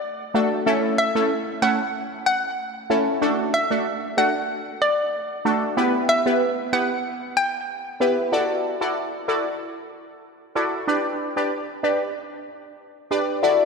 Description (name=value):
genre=dancehall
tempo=94 BPM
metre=4/4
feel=straight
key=D major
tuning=A4 = 444 Hz
part: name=synth brass stab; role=accompaniment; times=0.3-13.7 s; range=A3 to D5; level=-22 LUFS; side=equal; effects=chorus, phaser
part: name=hollow square pluck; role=melody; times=1.0-7.5 s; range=D5 to G5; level=-24 LUFS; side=equal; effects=chorus, analog delay
room=wet church reverb, RT60 2.9 s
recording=dreamy mix soaked in reverb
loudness=-20 LUFS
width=side -4 dB against mid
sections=0.0-8.3 A section; 8.3-13.7 B section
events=none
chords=0.0 D; 0.7 A; 3.2 D; 5.8 Em; 8.3 Dadd9; 10.9 G